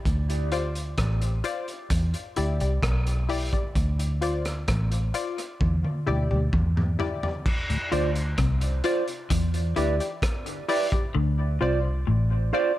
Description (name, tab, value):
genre	dub reggae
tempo	65 BPM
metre	4/4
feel	straight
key	D dorian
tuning	A4 = 440 Hz
part	vintage muted fingered electric bass	bass	0.1-12.5 s	A1 to E2	-25 LUFS	equal	none
part	crunchy breakbeat drum kit	drums	0.1-11.1 s	crash cymbal, hi-hat, kick drum, rim click, toms	-28 LUFS	equal	none
part	filtered dub chord stab	stabs	0.5-12.8 s	E4 to D5	-31 LUFS	left 4 dB	chorus, dub echo
part	mellow tonewheel organ	accompaniment	7.7-7.8 s	D2 to A2	-26 LUFS	left 1 dB	slow rotary speaker
part	mellow electric guitar	accompaniment	7.9-12.7 s	F4 to D5	-30 LUFS	right 7 dB	dub echo
part	clean electric guitar	riff	7.9-12.3 s	A2 to E3	-32 LUFS	left 6 dB	dub echo
room	light reverb, small room ambience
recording	none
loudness	-23 LUFS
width	side -14 dB against mid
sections	0.0-7.5 A section; 7.5-12.8 B section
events	break 0.1-7.5; drum fill 5.6-7.5; part muted 11.1-12.8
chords	0.1 Dm7; 1.9 Em7; 3.8 Dm7; 5.6 Em7; 7.5 Dm7; 9.3 Em7; 11.1 Dm7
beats	| 0.06 0.98 1.91 2.83 | 3.76 4.68 5.61 6.53 | 7.46 8.38 9.30 10.23 | 11.15 12.07